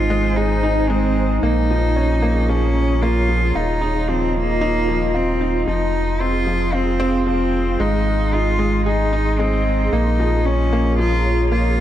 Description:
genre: piano and strings electronica.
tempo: 113 BPM.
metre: 4/4.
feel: straight.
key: Ab major.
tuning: A4 = 440 Hz.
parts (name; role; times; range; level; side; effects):
clear cello; melody; 0.0-11.8 s; Bb3 to F4; -22 LUFS; equal; none.
granular cloud pad; sustained chords; 0.0-11.8 s; Eb4 to C6; -26 LUFS; right 1 dB; built-in reverb.
bright upright piano; riff; 0.0-11.8 s; F3 to Ab4; -22 LUFS; left 1 dB; none.
warm sub bass; bass; 0.0-11.8 s; Eb1 to Bb1; -20 LUFS; equal; none.
room: light reverb, small room ambience.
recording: dark, warm production.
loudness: -16 LUFS.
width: side -12 dB against mid.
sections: 0.0-11.8 A section.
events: none.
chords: 0.0 Ab; 1.4 Bbm7; 3.6 Ebsus2; 5.7 Fm; 7.8 Ab; 9.9 Bbm7.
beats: 0.36 0.90 | 1.43 1.96 2.49 3.02 | 3.55 4.08 4.61 5.14 | 5.67 6.21 6.74 7.27 | 7.80 8.33 8.86 9.39 | 9.92 10.45 10.98 11.52.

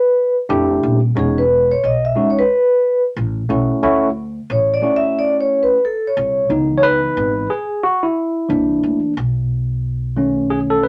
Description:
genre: hip hop, jazz-hop.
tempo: 90 BPM.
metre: 4/4.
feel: swing 60% on 16ths.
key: C# minor.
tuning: A4 = 440 Hz.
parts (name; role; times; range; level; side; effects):
vibraphone with soft mallets; melody; 0.0-6.5 s; G#4 to E5; -17 LUFS; equal; none.
tine electric piano; accompaniment; 0.5-10.9 s; D#3 to C#5; -18 LUFS; equal; none.
upright bass; bass; 0.5-10.9 s; D#1 to D2; -23 LUFS; equal; none.
room: light reverb.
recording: none.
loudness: -17 LUFS.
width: mono.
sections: 0.0-6.5 A section; 6.5-10.9 A section.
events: vibraphone solo 0.0-6.5; tine electric piano solo 6.5-10.9.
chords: 0.5 Fmaj13; 1.2 Emaj13; 3.2 A69; 3.8 Dmaj9; 6.5 C#m9; 8.5 C9; 9.2 B7.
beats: 0.50 | 1.16 1.83 2.50 3.16 | 3.83 4.50 5.16 5.83 | 6.50 7.16 7.83 8.50 | 9.16 9.83 10.50.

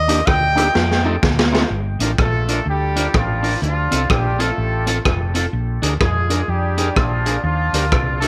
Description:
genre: ska.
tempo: 126 BPM.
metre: 4/4.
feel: swing 61% on 8ths.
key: G minor.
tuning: A4 = 441 Hz.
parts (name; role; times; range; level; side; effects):
warm trumpet; melody; 0.0-1.0 s; Eb5 to G5; -24 LUFS; equal; dub echo.
hollow-body short-scale fingered electric bass; bass; 0.0-8.3 s; F1 to F2; -23 LUFS; equal; none.
electric guitar at the edge of break-up; accompaniment; 0.1-8.3 s; C4 to Bb4; -28 LUFS; equal; dub echo.
percussive tonewheel organ; stabs; 0.1-1.6 s; A3 to G4; -29 LUFS; equal; none.
crunchy breakbeat drum kit; drums; 0.1-8.3 s; hi-hat, kick drum, rim click, snare drum; -22 LUFS; equal; none.
clear horn section; melody; 2.2-8.3 s; F3 to A4; -25 LUFS; equal; dub echo.
room: light reverb.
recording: none.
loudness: -18 LUFS.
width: mono.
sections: 0.0-1.7 A section; 1.7-8.3 B section.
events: trumpet solo 0.0-1.7; drum fill 0.8-1.7.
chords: 0.0 Ebmaj7; 0.8 F7; 1.7 Gm7; 3.6 Dm7; 5.5 Bb7; 7.4 Ebmaj7.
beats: 0.28 0.75 1.23 | 1.71 2.19 2.66 3.14 | 3.62 4.10 4.58 5.05 | 5.53 6.01 6.49 6.96 | 7.44 7.92.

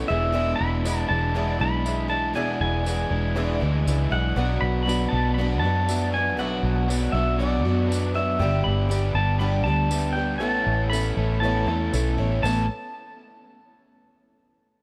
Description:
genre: folk rock and heartland rock.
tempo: 119 BPM.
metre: 4/4.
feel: straight.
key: A major.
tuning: A4 = 440 Hz.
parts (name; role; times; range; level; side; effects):
pedal steel guitar; melody; 0.0-12.7 s; D5 to B5; -30 LUFS; equal; tape echo.
bright baby grand piano; accompaniment; 0.0-12.7 s; F#4 to A5; -39 LUFS; equal; none.
picked twelve-string acoustic guitar; accompaniment; 0.0-12.7 s; E2 to G4; -33 LUFS; equal; none.
crunchy overdriven guitar; riff; 0.0-12.6 s; E2 to A4; -31 LUFS; equal; none.
vintage muted fingered electric bass; bass; 0.0-12.7 s; E1 to F#2; -27 LUFS; equal; none.
tambourine; percussion; 0.9-12.7 s; none; -42 LUFS; equal; none.
room: light reverb.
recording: none.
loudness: -24 LUFS.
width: mono.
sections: 0.0-12.4 A section; 12.4-14.5 B section.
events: none.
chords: 0.1 E7; 4.4 Bm; 8.4 G; 10.4 Aadd9.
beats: | 0.34 0.85 1.35 1.85 | 2.36 2.86 3.36 3.87 | 4.37 4.88 5.38 5.88 | 6.39 6.89 7.39 7.90 | 8.40 8.91 9.41 9.91 | 10.42 10.92 11.43 11.93 | 12.44.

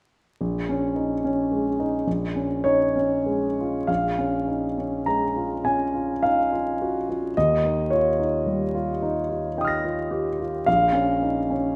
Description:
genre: classical, impressionist solo piano.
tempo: 53 BPM.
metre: 3/4.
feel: uneven beats, rubato.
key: Bb minor.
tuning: A4 = 440 Hz.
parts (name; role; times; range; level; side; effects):
warm concert grand piano; solo; 0.4-11.8 s; Bb1 to Bb6; -24 LUFS; equal; none.
room: moderate scoring stage reverb, RT60 1.7 s.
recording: vinyl crackle.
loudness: -24 LUFS.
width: mono.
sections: 0.4-3.9 A section; 3.9-11.8 B section.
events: none.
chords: 0.4 Bbm7; 2.1 Db/Bb; 3.9 Bbm7; 7.4 Eb9; 10.7 Bbm.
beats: | 0.39 1.50 2.65 | 3.89 5.06 6.21 | 7.35 8.46 9.57 | 10.67.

